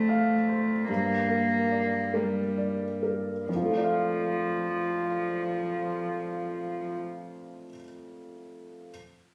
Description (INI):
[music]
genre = neoclassical piano and strings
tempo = 43-51 BPM (dotted quarters)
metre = 6/8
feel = rubato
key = F major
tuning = A4 = 440 Hz
[part]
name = warm cello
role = second line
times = 0.0-6.9 s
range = F3 to Bb3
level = -30 LUFS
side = equal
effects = none
[part]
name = warm upright piano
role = accompaniment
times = 0.0-8.9 s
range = F2 to F5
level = -33 LUFS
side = equal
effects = none
[sound]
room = light reverb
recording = recorded on a phone in the room, studio reverb, compression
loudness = -28 LUFS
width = mono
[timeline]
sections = 0.0-3.5 A section; 3.5-6.2 B section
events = slowing down 0.0-3.5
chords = 0.0 F6; 0.9 Gm; 3.5 F6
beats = | 0.89 2.13 | 3.48 4.83